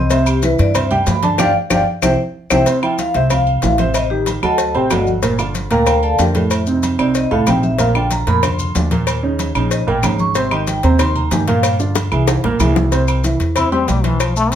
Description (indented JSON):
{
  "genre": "Afro-Cuban jazz",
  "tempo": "187 BPM",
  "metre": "4/4",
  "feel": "straight",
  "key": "F major",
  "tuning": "A4 = 440 Hz",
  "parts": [
    { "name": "vibraphone with medium hard mallets", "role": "melody", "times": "0.0-11.8 s", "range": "F#4 to Db6", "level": "-18 LUFS", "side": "left 1 dB", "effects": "none" },
    { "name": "dark baby grand piano", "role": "accompaniment", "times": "0.0-14.6 s", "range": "A2 to C6", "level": "-19 LUFS", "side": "right 3 dB", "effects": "none" },
    { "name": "upright bass", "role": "bass", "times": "0.0-14.6 s", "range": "G1 to G2", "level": "-19 LUFS", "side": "left 1 dB", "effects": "none" },
    { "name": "agogo bells and timbales", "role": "percussion", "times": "0.1-14.6 s", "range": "none", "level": "-25 LUFS", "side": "right 6 dB", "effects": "none" },
    { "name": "congas", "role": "percussion", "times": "0.1-14.6 s", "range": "none", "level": "-24 LUFS", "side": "left 2 dB", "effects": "none" },
    { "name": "cowbell and bongos", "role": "percussion", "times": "0.1-14.6 s", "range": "none", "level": "-24 LUFS", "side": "left 7 dB", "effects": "none" },
    { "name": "maracas", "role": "percussion", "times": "0.1-14.6 s", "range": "none", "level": "-29 LUFS", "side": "left 7 dB", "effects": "none" },
    { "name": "claves", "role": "percussion", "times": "0.3-14.4 s", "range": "none", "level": "-27 LUFS", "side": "left 7 dB", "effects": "none" },
    { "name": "trombone with metal mute", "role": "second line", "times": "13.6-14.6 s", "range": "E3 to E4", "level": "-18 LUFS", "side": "left 5 dB", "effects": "none" }
  ],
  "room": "moderate studio reverb, RT60 0.6 s",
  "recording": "none",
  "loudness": "-13 LUFS",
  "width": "side -9 dB against mid",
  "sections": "0.0-2.7 A section; 2.7-12.9 A section; 12.9-14.6 A section",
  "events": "vibraphone solo 0.0-12.9; band accent 1.4-2.7; drum fill 1.9-2.7, 12.0-12.9; trombone solo 12.9-14.6",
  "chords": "0.1 C; 1.4 G5; 2.0 C; 2.7 Fmaj7; 3.9 Am7b5; 4.6 D7b9; 5.2 Gm9; 6.5 F7; 7.8 Bb; 9.1 Eb5; 10.4 Abmaj9; 11.6 Gm7; 12.3 Caug7; 12.9 Cmaj7",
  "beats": "| 0.11 0.43 0.75 1.07 | 1.39 1.71 2.03 2.35 | 2.67 2.99 3.31 3.63 | 3.95 4.27 4.59 4.91 | 5.23 5.55 5.87 6.19 | 6.51 6.83 7.15 7.47 | 7.79 8.11 8.43 8.75 | 9.07 9.39 9.71 10.03 | 10.35 10.68 10.99 11.32 | 11.64 11.96 12.28 12.60 | 12.92 13.24 13.56 13.88 | 14.20 14.53"
}